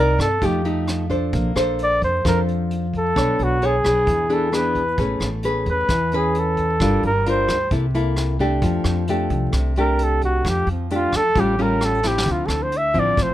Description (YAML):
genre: bossa nova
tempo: 132 BPM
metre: 4/4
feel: straight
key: F major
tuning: A4 = 438 Hz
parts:
  - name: warm flugelhorn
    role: melody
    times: 0.0-13.3 s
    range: C4 to E5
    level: -20 LUFS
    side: equal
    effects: none
  - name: nylon-string guitar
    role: accompaniment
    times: 0.0-13.3 s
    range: A2 to D5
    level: -22 LUFS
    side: left 1 dB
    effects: none
  - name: upright bass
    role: bass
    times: 0.0-13.3 s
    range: G1 to G2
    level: -24 LUFS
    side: equal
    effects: none
  - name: vintage brush drum kit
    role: drums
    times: 0.2-13.3 s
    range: hi-hat, kick drum, rim click, snare drum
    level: -27 LUFS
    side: equal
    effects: none
room: little or no reverb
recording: close, detailed microphones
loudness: -18 LUFS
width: side -13 dB against mid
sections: 0.0-12.3 A section; 12.3-13.3 A section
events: flugelhorn solo 0.0-13.3; drum fill 12.0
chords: 0.4 F9; 1.3 Bbmaj9; 3.2 Bm9; 4.1 E7; 5.0 Amaj9; 6.8 Gm7; 7.7 C13; 8.6 F69; 11.4 A7alt; 12.3 Dm9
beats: 0.42 0.88 | 1.33 1.79 2.25 2.70 | 3.16 3.62 4.07 4.53 | 4.98 5.44 5.89 6.35 | 6.80 7.26 7.71 8.17 | 8.62 9.08 9.54 9.99 | 10.45 10.90 11.36 11.81 | 12.27 12.72 13.18